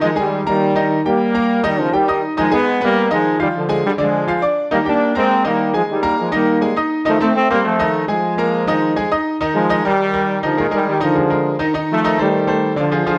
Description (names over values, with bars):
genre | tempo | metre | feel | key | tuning
latin | 205 BPM | 4/4 | straight | unclear | A4 = 440 Hz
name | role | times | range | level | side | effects
bright trombone section | melody | 0.0-13.2 s | Bb2 to D4 | -19 LUFS | equal | plate reverb
bright grand piano | accompaniment | 0.0-13.2 s | D3 to Eb6 | -20 LUFS | equal | none
room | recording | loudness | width
moderate large studio reverb, RT60 0.8 s | dark, warm production | -17 LUFS | mono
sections
0.0-9.4 A section; 9.4-13.2 B section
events
none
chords
0.0 Bb7sus4; 1.2 Eb; 2.4 Abm6; 3.5 Ddim; 4.7 Bb7sus4; 7.1 F7; 8.2 Bb7sus4; 9.4 Eb; 10.6 Bb7sus4; 11.7 F7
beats
| 0.02 0.31 0.60 0.90 | 1.19 1.49 1.78 2.07 | 2.37 2.66 2.95 3.25 | 3.54 3.83 4.13 4.42 | 4.71 5.01 5.30 5.59 | 5.89 6.18 6.47 6.77 | 7.06 7.35 7.64 7.94 | 8.23 8.52 8.82 9.11 | 9.40 9.70 9.99 10.28 | 10.57 10.87 11.16 11.45 | 11.74 12.04 12.33 12.62 | 12.92